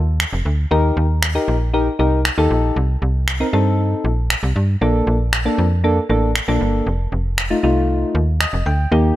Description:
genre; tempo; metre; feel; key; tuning
dance-pop; 117 BPM; 4/4; straight; C dorian; A4 = 440 Hz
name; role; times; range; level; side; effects
slap-like FM bass; bass; 0.0-9.1 s; F1 to G2; -18 LUFS; equal; none
electronic finger snaps; drums; 0.2-8.5 s; none; -22 LUFS; equal; overdrive
soft electric-piano-like synth keys; accompaniment; 0.7-9.2 s; A3 to G5; -19 LUFS; left 1 dB; chorus
room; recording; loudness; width
digital ambience; none; -15 LUFS; side -14 dB against mid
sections
0.0-9.2 A section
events
kick muted 3.8-4.8; synth keys fill 8.1-8.9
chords
0.0 F7(no3); 0.7 Cm7; 4.8 Bbmaj7; 6.9 F7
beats
0.20 | 0.71 1.22 1.74 2.25 | 2.76 3.28 3.79 4.30 | 4.81 5.33 5.84 6.35 | 6.87 7.38 7.89 8.40 | 8.92

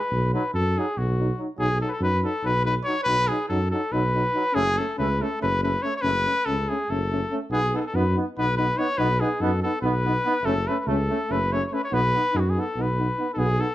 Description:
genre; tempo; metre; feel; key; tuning
balkan folk, Balkan brass band; 284 BPM (eighths); 7/8; straight; B mixolydian; A4 = 439 Hz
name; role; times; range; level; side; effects
warm trumpet; melody; 0.0-13.7 s; F#4 to C#5; -25 LUFS; left 1 dB; none
mellow tuba; bass; 0.1-13.6 s; F#1 to F#2; -25 LUFS; equal; none
brilliant trombone; accompaniment; 0.3-13.7 s; F#3 to B3; -32 LUFS; right 5 dB; none
mellow euphonium; accompaniment; 0.3-13.7 s; C#4 to D#4; -30 LUFS; left 2 dB; none
room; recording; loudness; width
moderate studio reverb, RT60 0.6 s; none; -21 LUFS; side -14 dB against mid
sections
0.0-1.6 A section; 1.6-13.4 B section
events
none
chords
0.1 B; 4.5 F#m; 7.5 B; 10.4 F#m; 11.9 B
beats
| 0.11 0.32 0.53 0.74 0.95 1.16 1.37 | 1.58 1.79 2.01 2.22 2.43 2.64 2.85 | 3.06 3.27 3.48 3.70 3.91 4.12 4.33 | 4.54 4.75 4.96 5.17 5.39 5.60 5.81 | 6.02 6.23 6.44 6.65 6.87 7.08 7.29 | 7.50 7.71 7.92 8.13 8.34 8.55 8.76 | 8.97 9.18 9.39 9.61 9.81 10.03 10.23 | 10.45 10.65 10.86 11.07 11.28 11.49 11.70 | 11.91 12.12 12.33 12.54 12.75 12.96 13.16 | 13.37 13.58

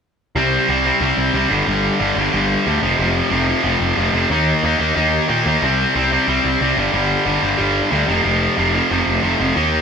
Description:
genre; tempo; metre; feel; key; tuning
punk; 182 BPM; 4/4; straight; unclear; A4 = 441 Hz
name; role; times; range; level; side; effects
distorted electric guitar; riff; 0.4-9.8 s; F2 to Eb4; -16 LUFS; equal; overdrive
fuzz picked electric bass; bass; 0.4-9.8 s; F1 to Bb2; -21 LUFS; equal; overdrive
room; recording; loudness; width
moderate studio reverb, RT60 0.6 s; band playing live in one room; -15 LUFS; side -6 dB against mid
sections
0.4-9.8 A section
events
none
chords
0.4 C5; 1.5 G5; 2.8 F5; 4.3 Eb5; 5.6 C5; 6.8 G5; 8.1 F5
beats
| 0.36 0.69 1.01 1.34 | 1.67 2.00 2.33 2.66 | 2.99 3.32 3.65 3.98 | 4.31 4.64 4.96 5.29 | 5.62 5.95 6.28 6.61 | 6.94 7.26 7.59 7.92 | 8.25 8.58 8.90 9.23 | 9.56

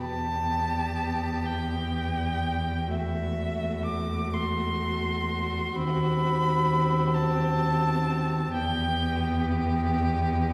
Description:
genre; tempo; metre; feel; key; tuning
classical, slow romantic movement for string quartet; 41-45 BPM (dotted quarters); 6/8; rubato; E minor; A4 = 443 Hz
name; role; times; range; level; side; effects
rich violin; melody; 0.0-9.4 s; E5 to D6; -32 LUFS; equal; none
warm violin; second line; 0.0-10.5 s; F#4 to G4; -37 LUFS; equal; none
rich viola; accompaniment; 0.0-10.5 s; A3 to B#3; -35 LUFS; equal; none
rich cello; bass; 0.0-10.5 s; D#2 to E2; -31 LUFS; equal; none
room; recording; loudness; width
wet recital hall reverb, RT60 1.5 s; heard from further back in the room; -27 LUFS; mono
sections
0.0-10.5 A section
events
none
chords
0.0 Em; 2.9 F#m7b5/E; 5.8 D#dim7; 8.5 Em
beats
1.43 | 2.89 4.33 | 5.75 7.13 | 8.52 9.88

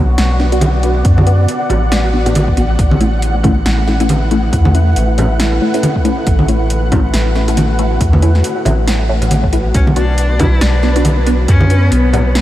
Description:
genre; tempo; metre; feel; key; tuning
deep dubstep; 138 BPM; 4/4; swing 58% on 16ths, half-time; unclear; A4 = 442 Hz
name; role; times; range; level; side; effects
deep dark ambient pad; sustained chords; 0.0-12.4 s; A3 to D5; -21 LUFS; equal; chorus, built-in reverb
filtered dub chord stab; stabs; 0.0-12.3 s; A3 to F#4; -20 LUFS; left 1 dB; phaser, analog chorus, cassette tape, dub echo
soft dub sub bass; bass; 0.0-12.4 s; A1 to F#2; -13 LUFS; equal; none
flickering grainy texture; texture; 0.0-12.4 s; B4 to F#5; -24 LUFS; equal; built-in reverb, wide subtle chorus
deep house drum kit; drums; 0.2-12.4 s; hi-hat, snare drum; -22 LUFS; equal; overdrive
congas; percussion; 0.6-12.2 s; none; -20 LUFS; right 1 dB; dub echo
electronic kick drum; drums; 1.0-11.6 s; none; -15 LUFS; equal; overdrive
rich cello; melody; 9.7-12.4 s; B3 to E4; -19 LUFS; left 2 dB; dub echo
room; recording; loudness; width
moderate huge ambient reverb, RT60 5.2 s; dreamy mix soaked in reverb, vinyl crackle; -10 LUFS; side -14 dB against mid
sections
0.0-12.4 A section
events
none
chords
0.0 Bm; 2.8 A; 9.7 Bm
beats
0.18 0.61 | 1.05 1.48 1.92 2.35 | 2.79 3.22 3.66 4.09 | 4.53 4.96 5.40 5.83 | 6.27 6.70 7.14 7.57 | 8.01 8.44 8.88 9.31 | 9.74 10.18 10.61 11.05 | 11.48 11.92 12.35

